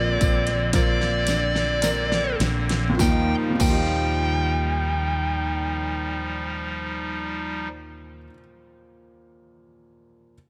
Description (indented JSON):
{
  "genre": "pop ballad",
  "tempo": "50-59 BPM",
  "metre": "4/4",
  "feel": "straight",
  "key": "Eb major",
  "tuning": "A4 = 440 Hz",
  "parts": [
    { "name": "dark smooth lead guitar", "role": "melody", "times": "0.0-8.3 s", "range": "D5 to G5", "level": "-29 LUFS", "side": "equal", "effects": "overdrive" },
    { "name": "clear baby grand piano", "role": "accompaniment", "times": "0.0-10.4 s", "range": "Eb2 to Eb5", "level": "-33 LUFS", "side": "equal", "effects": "none" },
    { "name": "pipe organ, clarinet reed", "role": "sustained chords", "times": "0.0-7.7 s", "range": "D3 to Eb4", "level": "-32 LUFS", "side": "equal", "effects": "none" },
    { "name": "nylon-string guitar", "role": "arpeggios", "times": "0.0-8.4 s", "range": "Bb2 to G4", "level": "-34 LUFS", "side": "equal", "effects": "none" },
    { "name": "mellow fretless electric bass", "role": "bass", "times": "0.0-8.3 s", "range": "Bb1 to Eb2", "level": "-30 LUFS", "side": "equal", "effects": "analog chorus" },
    { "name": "pop drum kit", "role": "drums", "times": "0.2-3.9 s", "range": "crash cymbal, hi-hat, kick drum, snare drum", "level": "-27 LUFS", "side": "equal", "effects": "none" },
    { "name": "tambourine", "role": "percussion", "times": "0.2-3.9 s", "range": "none", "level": "-37 LUFS", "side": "equal", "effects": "none" }
  ],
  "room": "light reverb, small room reverb",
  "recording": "none",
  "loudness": "-23 LUFS",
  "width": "mono",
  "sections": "0.0-3.0 A section; 3.0-7.8 B section",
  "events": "slowing down 0.0-3.0; drum fill 0.7-3.0",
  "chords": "0.0 Bbadd9; 3.0 Ebadd9"
}